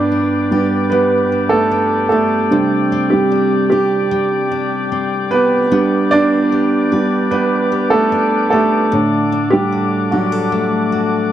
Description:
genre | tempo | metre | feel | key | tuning
pop ballad | 75 BPM | 4/4 | straight | G major | A4 = 440 Hz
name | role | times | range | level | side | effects
warm upright piano | accompaniment | 0.0-11.3 s | D3 to D5 | -14 LUFS | right 3 dB | none
warm woodwind section | sustained chords | 0.0-11.3 s | G4 to D6 | -21 LUFS | left 3 dB | none
picked steel-string acoustic guitar | arpeggios | 0.0-11.3 s | G2 to B4 | -21 LUFS | left 6 dB | none
room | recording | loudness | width
small room ambience | dry, close 1970s-style studio recording | -13 LUFS | side -11 dB against mid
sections
0.0-11.3 A section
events
upright piano solo 0.0-11.3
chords
0.0 G; 2.5 Csus2; 5.7 G; 8.9 D/A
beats
0.12 0.92 1.72 | 2.52 3.32 4.12 4.92 | 5.72 6.52 7.32 8.12 | 8.92 9.72 10.52 11.32

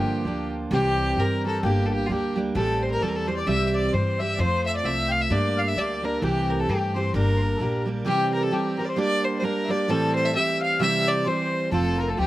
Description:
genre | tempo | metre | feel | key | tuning
celtic folk, Celtic polka | 131 BPM | 2/4 | swing 58% on 8ths | unclear | A4 = 441 Hz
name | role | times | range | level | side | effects
rich fiddle | melody | 0.0-12.3 s | F4 to F5 | -26 LUFS | left 1 dB | none
mellow accordion | second line | 0.0-12.3 s | G4 to G5 | -32 LUFS | left 6 dB | slapback echo
picked steel-string acoustic guitar | accompaniment | 0.0-12.3 s | G2 to G4 | -26 LUFS | right 3 dB | none
upright bass | bass | 0.0-8.0, 11.7-12.3 s | F1 to G2 | -27 LUFS | left 1 dB | none
room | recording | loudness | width
little or no reverb | recorded outdoors, with no room sound | -21 LUFS | side -15 dB against mid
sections
0.7-8.1 A section; 8.1-12.3 A section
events
none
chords
0.0 Gm7; 0.7 C; 1.6 Gm; 2.6 Am7; 3.5 C; 4.4 F; 5.3 Gm; 6.2 C6; 7.1 Gm; 8.1 C; 9.0 Gm; 9.9 Am7; 10.8 C; 11.7 F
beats
0.26 | 0.72 1.18 | 1.64 2.10 | 2.56 3.01 | 3.47 3.93 | 4.39 4.85 | 5.31 5.77 | 6.22 6.68 | 7.14 7.60 | 8.06 8.52 | 8.97 9.43 | 9.89 10.35 | 10.81 11.27 | 11.72 12.18

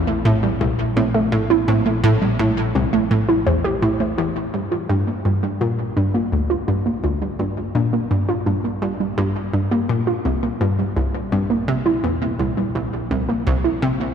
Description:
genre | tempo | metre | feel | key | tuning
ambient, sequencer-driven space music | 84 BPM | 4/4 | straight | unclear | A4 = 440 Hz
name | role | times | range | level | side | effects
analog pluck | riff | 0.0-14.0 s | C2 to C3 | -20 LUFS | equal | chorus, tape echo
analog drone | bass | 0.0-14.1 s | Bb1 | -29 LUFS | left 1 dB | chorus
warbly dusty pluck | arpeggios | 0.1-14.1 s | G3 to C5 | -22 LUFS | right 2 dB | chorus, auto-pan, tape echo
room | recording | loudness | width
wet cathedral reverb, RT60 5.1 s | in a vast, echoing space | -18 LUFS | side -8 dB against mid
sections
0.0-4.5 A section; 4.5-14.1 B section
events
fade-in on synth drone 4.5-14.1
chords
0.0 Am/Bb; 4.5 Gm7/Bb; 10.3 C7/Bb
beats
0.25 0.97 | 1.68 2.39 3.11 3.82 | 4.54 5.25 5.97 6.68 | 7.39 8.11 8.82 9.54 | 10.25 10.97 11.68 12.39 | 13.11 13.82

